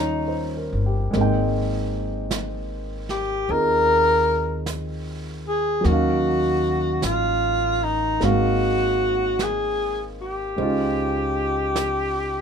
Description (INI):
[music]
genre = jazz ballad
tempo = 51 BPM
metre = 4/4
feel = swing 66% on 8ths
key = unclear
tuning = A4 = 439 Hz
[part]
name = breathy alto saxophone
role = melody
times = 0.0-12.4 s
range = Eb4 to Bb4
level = -21 LUFS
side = left 1 dB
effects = none
[part]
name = warm concert grand piano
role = accompaniment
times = 0.0-12.4 s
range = Gb3 to G5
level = -26 LUFS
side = right 1 dB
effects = none
[part]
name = upright bass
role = bass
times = 0.0-12.4 s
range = G1 to Eb2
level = -27 LUFS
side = equal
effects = none
[part]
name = jazz brush drum kit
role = drums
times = 1.1-12.4 s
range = brushed snare drum, hi-hat, snare drum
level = -34 LUFS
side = right 4 dB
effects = none
[sound]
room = light reverb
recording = minimal, uncompressed stereo recording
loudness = -20 LUFS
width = side -7 dB against mid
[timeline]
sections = 0.0-12.4 A section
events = none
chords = 0.0 Eb9; 1.1 Abmaj9; 5.8 Ebm7; 8.2 Ab13; 10.6 Dbmaj9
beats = | 1.13 2.31 3.49 4.67 | 5.85 7.02 8.21 9.39 | 10.58 11.76